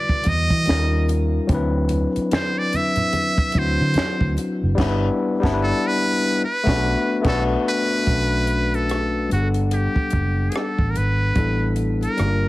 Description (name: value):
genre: R&B, neo-soul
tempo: 73 BPM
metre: 4/4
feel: swing 59% on 16ths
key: B minor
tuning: A4 = 438 Hz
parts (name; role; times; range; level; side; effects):
- trumpet with metal mute; melody; 0.0-12.5 s; F#4 to E5; -24 LUFS; right 1 dB; none
- overdriven tine electric piano; accompaniment; 0.0-12.5 s; D3 to F#5; -23 LUFS; left 3 dB; none
- compact cocktail drum kit; drums; 0.1-12.4 s; crash cymbal, finger snaps, hi-hat, kick drum, rim click, snare drum; -24 LUFS; equal; none
- vintage muted fingered electric bass; bass; 0.3-12.5 s; F#1 to E3; -21 LUFS; right 1 dB; none
- congas; percussion; 0.3-4.6 s; none; -29 LUFS; right 2 dB; none
room: studio reverb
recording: heavily compressed radio sound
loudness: -18 LUFS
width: side -18 dB against mid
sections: 0.0-8.1 A section; 8.1-12.5 B section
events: band accent 4.8-8.1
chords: 0.0 Em9; 0.7 D#9; 1.5 D13; 4.8 G6; 6.4 Bm7; 8.1 Bm9; 9.3 Gmaj9; 11.4 A9sus4